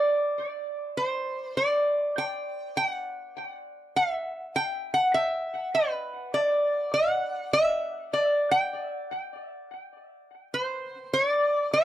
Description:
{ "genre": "hawaiian", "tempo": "100 BPM", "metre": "4/4", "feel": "swing 64% on 8ths", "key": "G major", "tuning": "A4 = 440 Hz", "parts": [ { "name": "lap resonator guitar", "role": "solo", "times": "0.0-11.8 s", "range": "B4 to G5", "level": "-25 LUFS", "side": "equal", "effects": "tape echo" } ], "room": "light reverb", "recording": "dry, close 1970s-style studio recording", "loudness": "-24 LUFS", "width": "side -13 dB against mid", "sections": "0.0-11.1 A section", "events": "none", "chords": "none", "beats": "0.35 0.94 | 1.54 2.14 2.73 3.33 | 3.93 4.52 5.12 5.72 | 6.32 6.91 7.51 8.11 | 8.71 9.30 9.90 10.50 | 11.10 11.69" }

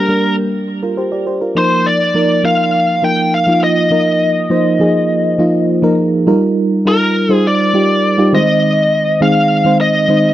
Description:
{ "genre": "pop", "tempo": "102 BPM", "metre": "4/4", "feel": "straight", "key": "Eb major", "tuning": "A4 = 437 Hz", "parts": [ { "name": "biting lead guitar", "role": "melody", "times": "0.0-10.3 s", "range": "Bb4 to G5", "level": "-14 LUFS", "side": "left 1 dB", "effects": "overdrive, tape echo" }, { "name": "mellow FM electric piano", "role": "accompaniment", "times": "0.0-10.3 s", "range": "Eb3 to D5", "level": "-13 LUFS", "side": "right 1 dB", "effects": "chorus, tremolo" } ], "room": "light reverb", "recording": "dry, close 1970s-style studio recording", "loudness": "-11 LUFS", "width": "side -13 dB against mid", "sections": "0.0-6.3 A section; 6.3-10.3 B section", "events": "none", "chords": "0.0 Gm; 1.6 Bbsus4; 6.3 Ebadd9; 8.3 Ab/Eb", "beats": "0.39 0.98 | 1.57 2.15 2.74 3.33 | 3.92 4.51 5.10 5.68 | 6.27 6.86 7.45 8.04 | 8.62 9.21 9.80" }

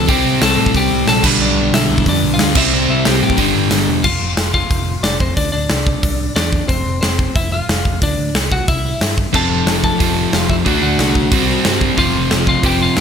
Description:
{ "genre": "punk rock", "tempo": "182 BPM", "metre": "4/4", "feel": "straight", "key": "G mixolydian", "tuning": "A4 = 440 Hz", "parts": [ { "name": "lightly driven lead guitar", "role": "melody", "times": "0.0-13.0 s", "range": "C4 to B5", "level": "-20 LUFS", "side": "left 3 dB", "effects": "ping-pong delay" }, { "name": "overdriven electric guitar", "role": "riff", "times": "0.0-4.0, 9.3-13.0 s", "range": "F2 to D4", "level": "-18 LUFS", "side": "right 14 dB", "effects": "none" }, { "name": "sludgy distorted guitar", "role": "riff", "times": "0.0-4.0, 9.3-13.0 s", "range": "F2 to D4", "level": "-19 LUFS", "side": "left 15 dB", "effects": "overdrive" }, { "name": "overdriven picked electric bass", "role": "bass", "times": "0.0-13.0 s", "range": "E1 to A2", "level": "-20 LUFS", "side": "equal", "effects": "none" }, { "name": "big rock drum kit", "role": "drums", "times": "0.1-13.0 s", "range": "crash cymbal, hi-hat, kick drum, snare drum", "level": "-17 LUFS", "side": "equal", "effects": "none" } ], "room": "little or no reverb", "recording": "none", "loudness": "-13 LUFS", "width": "side -7 dB against mid", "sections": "0.0-4.0 A section; 4.0-13.0 B section", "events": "none", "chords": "0.1 C5; 1.2 G/B; 2.6 C; 3.4 G5; 4.0 F5; 5.4 Csus2; 6.0 C; 6.7 F5; 8.0 D; 8.7 C; 9.3 F; 10.7 D; 11.3 C5; 12.0 F5", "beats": "| 0.09 0.42 0.75 1.08 | 1.41 1.74 2.06 2.39 | 2.72 3.05 3.38 3.71 | 4.04 4.38 4.71 5.04 | 5.37 5.70 6.03 6.36 | 6.69 7.03 7.36 7.69 | 8.02 8.35 8.68 9.01 | 9.34 9.67 10.00 10.33 | 10.66 10.99 11.32 11.65 | 11.98 12.31 12.64 12.97" }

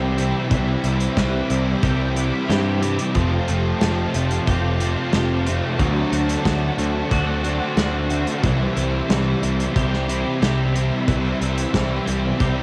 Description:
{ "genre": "rock, shoegaze and dream pop", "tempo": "91 BPM", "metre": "4/4", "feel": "straight", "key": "C major", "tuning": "A4 = 439 Hz", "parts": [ { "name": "string machine, violins", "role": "sustained chords", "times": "0.0-12.6 s", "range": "F#4 to D6", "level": "-34 LUFS", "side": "equal", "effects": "ensemble chorus, cassette tape" }, { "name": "clean electric guitar", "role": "arpeggios", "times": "0.0-12.6 s", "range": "E3 to G4", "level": "-33 LUFS", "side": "equal", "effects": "ensemble chorus, cassette tape, analog delay" }, { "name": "overdriven electric guitar", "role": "riff", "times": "0.0-12.6 s", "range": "C3 to F#4", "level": "-29 LUFS", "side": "equal", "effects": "reverse reverb, cassette tape" }, { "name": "thick fuzz guitar", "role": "riff", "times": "0.0-12.6 s", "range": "F2 to D4", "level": "-27 LUFS", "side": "equal", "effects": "distortion, ensemble chorus, cassette tape" }, { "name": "modern bright picked electric bass", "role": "bass", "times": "0.0-12.6 s", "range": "F1 to G2", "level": "-25 LUFS", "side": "equal", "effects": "none" }, { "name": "loose indie drum kit", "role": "drums", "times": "0.2-12.6 s", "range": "hi-hat, kick drum, snare drum", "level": "-26 LUFS", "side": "equal", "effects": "cassette tape" } ], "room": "light reverb, small room reverb", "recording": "home recording on cassette", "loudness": "-21 LUFS", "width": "mono", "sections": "0.0-12.6 A section", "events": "none", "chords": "0.0 Cmaj7; 3.1 Fadd9; 5.8 D7; 8.4 Cmaj7", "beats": "| 0.51 1.17 1.83 2.49 | 3.15 3.81 4.47 5.13 | 5.79 6.45 7.11 7.77 | 8.44 9.10 9.76 10.42 | 11.08 11.74 12.40" }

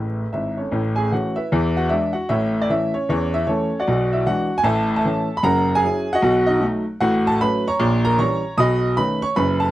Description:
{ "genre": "jazz, stride piano", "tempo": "153 BPM", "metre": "4/4", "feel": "swing 63% on 8ths", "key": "A major", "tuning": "A4 = 440 Hz", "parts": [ { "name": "clear baby grand piano", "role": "solo", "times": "0.0-9.7 s", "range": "F#1 to D#6", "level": "-17 LUFS", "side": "equal", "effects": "none" } ], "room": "light reverb", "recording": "dry, close 1970s-style studio recording, vinyl crackle", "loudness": "-17 LUFS", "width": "side -15 dB against mid", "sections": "0.7-9.7 A section", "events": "grand piano fill 0.0-0.7", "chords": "0.0 E; 0.7 A; 1.5 E7; 2.3 A; 3.9 E7/B; 4.6 A; 5.4 F#7; 6.2 B7; 7.0 F#m/A; 7.8 A#dim7; 8.6 B9", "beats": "0.33 | 0.73 1.12 1.51 1.90 | 2.29 2.69 3.08 3.47 | 3.86 4.25 4.65 5.04 | 5.43 5.82 6.22 6.61 | 7.00 7.39 7.79 8.18 | 8.57 8.96 9.36" }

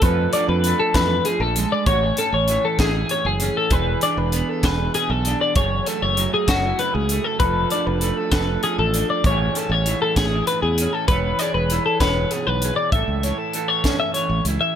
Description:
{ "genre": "math rock and midwest emo", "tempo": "65 BPM (dotted quarters)", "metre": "6/8", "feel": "straight", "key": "A major", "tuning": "A4 = 442 Hz", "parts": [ { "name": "electric guitar through a small old amp", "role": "accompaniment", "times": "0.0-14.8 s", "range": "F#2 to C#5", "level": "-25 LUFS", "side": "right 5 dB", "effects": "none" }, { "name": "twelve-string electric guitar", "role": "arpeggios", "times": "0.0-14.8 s", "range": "F#4 to E5", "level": "-21 LUFS", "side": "left 4 dB", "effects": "lush chorus" }, { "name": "modern bright fingered electric bass", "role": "bass", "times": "0.0-14.6 s", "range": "E1 to F2", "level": "-23 LUFS", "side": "right 1 dB", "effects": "none" }, { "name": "crisp fusion drum kit", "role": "drums", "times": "0.0-14.6 s", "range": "hi-hat, kick drum, snare drum", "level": "-24 LUFS", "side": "equal", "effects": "none" } ], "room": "light reverb", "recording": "none", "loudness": "-18 LUFS", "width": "side -9 dB against mid", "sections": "0.0-12.9 A section; 12.9-14.8 B section", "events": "none", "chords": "0.0 Dm6/F; 1.9 Amaj7; 3.7 E7; 5.6 F#m11; 7.4 Dm6/F; 9.2 Amaj7; 11.1 E6; 12.9 A", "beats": "| 0.03 0.95 | 1.87 2.79 | 3.72 4.64 | 5.56 6.48 | 7.40 8.32 | 9.24 10.16 | 11.08 12.00 | 12.92 13.84" }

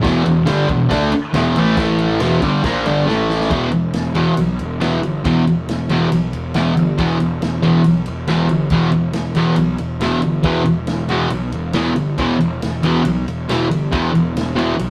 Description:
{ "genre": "garage rock duo or trio", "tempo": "138 BPM", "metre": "4/4", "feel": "straight", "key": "E minor", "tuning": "A4 = 440 Hz", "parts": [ { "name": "fuzz guitar", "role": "riff", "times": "0.0-14.7 s", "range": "E2 to D4", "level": "-18 LUFS", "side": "equal", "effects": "distortion" }, { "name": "fuzz picked electric bass", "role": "bass", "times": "0.0-14.9 s", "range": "E1 to D2", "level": "-24 LUFS", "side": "equal", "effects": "overdrive" }, { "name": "vintage drum kit", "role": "drums", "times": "0.0-14.9 s", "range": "kick drum, ride cymbal, snare drum", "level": "-30 LUFS", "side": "equal", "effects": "none" } ], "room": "moderate studio reverb, RT60 0.6 s", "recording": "rough rehearsal-room recording", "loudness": "-17 LUFS", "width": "mono", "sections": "0.0-3.5 A section; 3.5-14.9 B section", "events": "drum fill 3.1-3.5", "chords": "0.0 Em; 1.8 A5; 2.2 Em; 3.1 A5; 3.5 E5", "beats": "| 0.05 0.48 0.92 1.35 | 1.78 2.21 2.65 3.08 | 3.51 3.95 4.38 4.82 | 5.25 5.68 6.12 6.55 | 6.99 7.42 7.86 8.29 | 8.72 9.16 9.59 10.02 | 10.46 10.89 11.32 11.76 | 12.19 12.62 13.05 13.49 | 13.92 14.36 14.79" }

